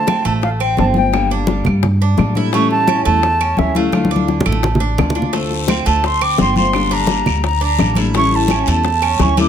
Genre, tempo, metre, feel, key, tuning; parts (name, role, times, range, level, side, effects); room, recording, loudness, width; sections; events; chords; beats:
latin, Cuban son and guajira; 171 BPM; 4/4; straight; D minor; A4 = 440 Hz
silver concert flute; melody; 0.0-9.5 s; E5 to D6; -18 LUFS; right 2 dB
nylon-string guitar; accompaniment; 0.0-9.5 s; D3 to A4; -21 LUFS; left 6 dB
Cuban tres; arpeggios; 0.0-9.5 s; A3 to E4; -22 LUFS; right 7 dB
bongos; percussion; 0.1-9.5 s; -24 LUFS; left 9 dB
claves; percussion; 0.1-9.2 s; -29 LUFS; right 9 dB
congas; percussion; 0.1-9.5 s; -21 LUFS; left 1 dB
upright bass; bass; 0.2-9.5 s; G1 to A2; -18 LUFS; equal
guiro; percussion; 5.3-9.5 s; -28 LUFS; left 9 dB
moderate large studio reverb, RT60 1.4 s; close, detailed microphones; -13 LUFS; side -8 dB against mid
0.0-9.5 A section
drum fill 3.9-5.3
0.0 Dm7; 1.1 Gmadd9; 2.5 A7; 3.9 Dm; 5.3 Dm7; 6.7 Gmadd9; 8.1 A7
0.08 0.43 0.78 | 1.13 1.48 1.83 2.18 | 2.53 2.88 3.23 3.58 | 3.93 4.28 4.63 4.98 | 5.33 5.68 6.04 6.39 | 6.74 7.09 7.44 7.79 | 8.14 8.49 8.85 9.20